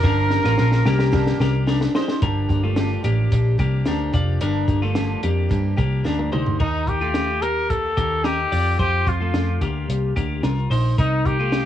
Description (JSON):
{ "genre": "jangly indie pop", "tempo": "110 BPM", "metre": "4/4", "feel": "straight", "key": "unclear", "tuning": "A4 = 443 Hz", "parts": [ { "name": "mellow trumpet", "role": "melody", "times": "0.0-1.7, 6.6-11.7 s", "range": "Eb4 to Bb4", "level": "-24 LUFS", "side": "equal", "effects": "analog delay" }, { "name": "picked steel-string acoustic guitar", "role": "accompaniment", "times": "0.0-6.6 s", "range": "G2 to G4", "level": "-29 LUFS", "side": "right 10 dB", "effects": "cassette tape" }, { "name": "twelve-string electric guitar", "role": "arpeggios", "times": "0.0-11.7 s", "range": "A3 to D5", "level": "-26 LUFS", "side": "left 4 dB", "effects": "cassette tape" }, { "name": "vintage muted picked electric bass", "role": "bass", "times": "0.0-11.6 s", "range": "F1 to G2", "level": "-21 LUFS", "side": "equal", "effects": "none" }, { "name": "compact cocktail drum kit", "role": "drums", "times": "0.0-11.7 s", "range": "crash cymbal, hi-hat, kick drum, snare drum, toms", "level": "-24 LUFS", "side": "equal", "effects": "cassette tape" } ], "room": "little or no reverb", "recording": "home recording on cassette", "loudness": "-18 LUFS", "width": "side -11 dB against mid", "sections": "0.0-2.2 A section; 2.2-6.6 B section; 6.6-11.7 C section", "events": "drum fill 0.0-2.2, 6.1-6.6", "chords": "0.0 Gm7; 6.6 Eb; 8.5 Fsus2; 11.0 Cm7" }